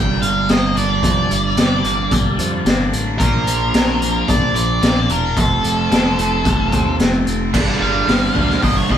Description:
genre	indie rock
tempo	111 BPM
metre	4/4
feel	straight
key	unclear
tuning	A4 = 435 Hz
part	octave-fuzz lead guitar	melody	0.0-9.0 s	A4 to G5	-20 LUFS	equal	distortion
part	cranked stack guitar	riff	0.0-9.0 s	F2 to D4	-23 LUFS	left 4 dB	overdrive, phaser
part	overdriven electric guitar	riff	0.0-9.0 s	F2 to D4	-22 LUFS	right 5 dB	none
part	modern bright picked electric bass	bass	0.0-9.0 s	E1 to F2	-23 LUFS	equal	none
part	raw garage drum kit	drums	0.2-9.0 s	crash cymbal, hi-hat, kick drum, snare drum	-18 LUFS	left 1 dB	none
room	moderate small room ambience, RT60 0.5 s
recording	band playing live in one room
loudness	-14 LUFS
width	side -9 dB against mid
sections	0.0-7.5 A section; 7.5-9.0 B section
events	lead electric guitar solo 7.5-9.0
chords	0.0 Gm; 3.2 Bb; 5.4 F; 7.5 Gm

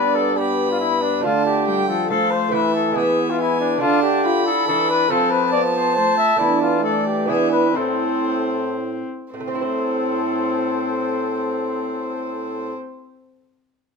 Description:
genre	classical, renaissance-style consort dance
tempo	106-141 BPM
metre	3/4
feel	straight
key	A minor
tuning	A4 = 439 Hz
part	warm cornet	melody	0.0-12.7 s	D4 to E5	-22 LUFS	left 5 dB	none
part	warm violin	second line	0.0-12.7 s	C5 to B5	-26 LUFS	right 5 dB	none
part	lute	accompaniment	0.0-13.0 s	G2 to F5	-25 LUFS	right 9 dB	none
part	warm viola	accompaniment	0.0-12.7 s	F3 to F4	-25 LUFS	left 4 dB	none
part	bright trombone	bass	0.0-12.7 s	G2 to F3	-26 LUFS	right 1 dB	none
room	moderate stone room reverb, RT60 1.2 s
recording	none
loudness	-17 LUFS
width	side -4 dB against mid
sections	0.0-9.3 A section; 9.3-12.7 B section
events	slowing down 5.8-9.3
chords	0.0 G; 1.2 Dm; 2.5 Esus4; 3.0 E; 3.8 Dm; 5.1 F; 6.4 E7sus4; 7.3 E7; 7.8 Am

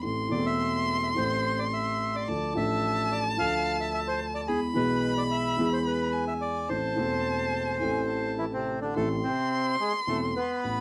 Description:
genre	tango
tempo	108 BPM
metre	4/4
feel	rubato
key	A harmonic minor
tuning	A4 = 440 Hz
part	warm violin	second line	0.0-10.8 s	G#5 to C6	-34 LUFS	equal	none
part	warm concert grand piano	accompaniment	0.0-10.8 s	E1 to A4	-32 LUFS	equal	none
part	bandoneon	melody	0.3-10.8 s	C3 to F5	-33 LUFS	equal	slapback echo
room	light reverb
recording	dry, close 1970s-style studio recording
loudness	-28 LUFS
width	mono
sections	0.0-9.0 A section; 9.0-10.8 A section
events	none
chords	0.0 Am; 2.3 Dm; 4.5 E; 6.7 Am

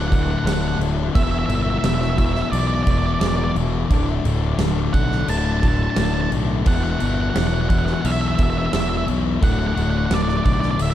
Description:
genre	post-rock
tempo	87 BPM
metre	4/4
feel	straight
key	D major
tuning	A4 = 440 Hz
part	octave-fuzz lead guitar	melody	0.0-10.9 s	D5 to A5	-26 LUFS	right 4 dB	distortion, digital delay
part	thick fuzz guitar	riff	0.0-10.9 s	D2 to E3	-23 LUFS	left 5 dB	distortion
part	fuzz fingered electric bass	bass	0.0-10.9 s	D1 to B1	-23 LUFS	right 1 dB	overdrive
part	huge arena drum kit	drums	0.1-10.9 s	crash cymbal, kick drum, snare drum	-23 LUFS	right 1 dB	none
room	little or no reverb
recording	dark, warm production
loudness	-17 LUFS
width	side -12 dB against mid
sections	0.0-10.9 A section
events	none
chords	0.0 D; 1.2 E7(no3); 3.9 D5; 6.7 E5; 9.4 D

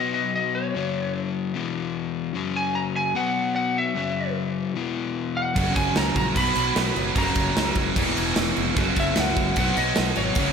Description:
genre	hard rock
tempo	150 BPM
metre	4/4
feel	straight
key	F# mixolydian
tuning	A4 = 443 Hz
part	lightly driven lead guitar	melody	0.0-10.5 s	C#5 to B5	-26 LUFS	equal	slapback echo
part	overdriven semi-hollow guitar	riff	0.0-10.5 s	E2 to B3	-27 LUFS	left 7 dB	none
part	overdriven electric guitar	riff	5.6-10.5 s	E2 to B3	-28 LUFS	right 12 dB	none
part	overdriven semi-hollow guitar	riff	5.6-10.5 s	E2 to B3	-31 LUFS	right 1 dB	none
part	fingered electric bass	bass	5.6-10.5 s	E1 to C#2	-30 LUFS	right 1 dB	none
part	big rock drum kit	drums	5.6-10.5 s	crash cymbal, kick drum, snare drum	-24 LUFS	right 1 dB	none
room	moderate lush hall reverb, RT60 1.8 s, small room ambience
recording	big arena sound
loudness	-21 LUFS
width	side -6 dB against mid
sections	0.0-10.5 A section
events	none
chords	0.0 B5; 0.8 F#5; 1.6 E5; 2.4 F#5; 3.2 B5; 4.0 F#5; 4.8 E5; 5.6 F#; 6.4 B5; 7.2 F#; 8.0 E5; 8.8 F#5; 9.6 B

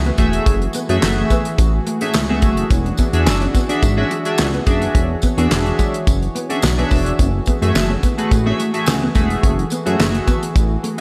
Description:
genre	early-eighties boogie funk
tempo	107 BPM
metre	4/4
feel	straight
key	F# minor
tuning	A4 = 440 Hz
part	brassy analog pad	sustained chords	0.0-11.0 s	E3 to C#5	-29 LUFS	equal	chorus
part	chorused synth bass	bass	0.0-10.8 s	E1 to F#2	-22 LUFS	equal	none
part	mellow electric guitar	riff	0.1-11.0 s	G#3 to C#4	-28 LUFS	equal	ensemble chorus
part	damped 70s drum kit	drums	0.1-11.0 s	handclaps, hi-hat, kick drum, snare drum	-20 LUFS	equal	none
part	chorused polysynth	accompaniment	0.2-11.0 s	A3 to E5	-24 LUFS	equal	slapback echo
part	tambourine	percussion	0.2-10.7 s	none	-35 LUFS	equal	none
room	moderate recital hall reverb, RT60 1.6 s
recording	big arena sound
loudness	-17 LUFS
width	mono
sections	0.0-11.0 A section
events	none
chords	0.0 F#m9; 2.7 E9; 7.2 F#m9

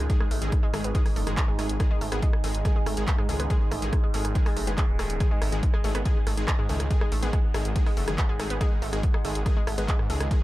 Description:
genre	driving peak-time techno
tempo	141 BPM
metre	4/4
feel	straight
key	unclear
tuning	A4 = 439 Hz
part	supersaw stab	stabs	0.0-10.4 s	D#3 to G#4	-34 LUFS	left 1 dB	sidechain pumping, tape echo
part	detuned saw bass	bass	0.0-10.3 s	D#1 to G#2	-30 LUFS	equal	sidechain pumping
part	overtone-sweeping drone	drone	0.0-10.4 s	G#2	-39 LUFS	right 2 dB	chorus, built-in reverb, sidechain pumping
part	deep dark ambient pad	texture	0.0-10.4 s	D#4 to G#5	-37 LUFS	right 1 dB	chorus, built-in reverb, sidechain pumping
part	electronic kick drum	drums	0.1-10.4 s	none	-24 LUFS	equal	none
part	punchy analog drum machine	drums	0.1-10.4 s	handclaps, hi-hat, rim click	-34 LUFS	equal	sidechain pumping on hats
part	analog pluck	riff	0.2-10.1 s	G#3 to B3	-36 LUFS	equal	chorus, overdrive, sidechain pumping, tape echo
room	little or no reverb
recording	none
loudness	-23 LUFS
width	side -16 dB against mid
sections	0.0-10.4 A section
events	none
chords	0.0 G#5

